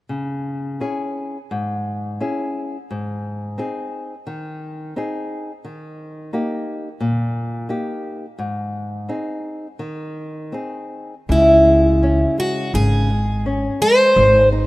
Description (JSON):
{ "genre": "fado-style ballad", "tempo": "79-89 BPM", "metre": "4/4", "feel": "rubato", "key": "C# harmonic minor", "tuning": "A4 = 440 Hz", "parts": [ { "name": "nylon-string guitar", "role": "accompaniment", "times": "0.1-14.7 s", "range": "G#2 to G#4", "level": "-25 LUFS", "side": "left 1 dB", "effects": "none" }, { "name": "picked plugged-in twelve-string acoustic guitar", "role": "melody", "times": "11.3-14.5 s", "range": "E4 to B#4", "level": "-13 LUFS", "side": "equal", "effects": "none" }, { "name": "upright bass", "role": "bass", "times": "11.3-14.7 s", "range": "G#1 to C#2", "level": "-17 LUFS", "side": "equal", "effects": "none" } ], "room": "light reverb, studio reverb", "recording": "rough home demo mix, lossy compression artefacts", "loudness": "-17 LUFS", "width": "side -20 dB against mid", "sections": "0.1-11.3 A section; 11.3-14.7 B section", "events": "none", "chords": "0.1 C#m; 2.9 G#; 5.6 D#; 8.4 G#; 11.3 C#m" }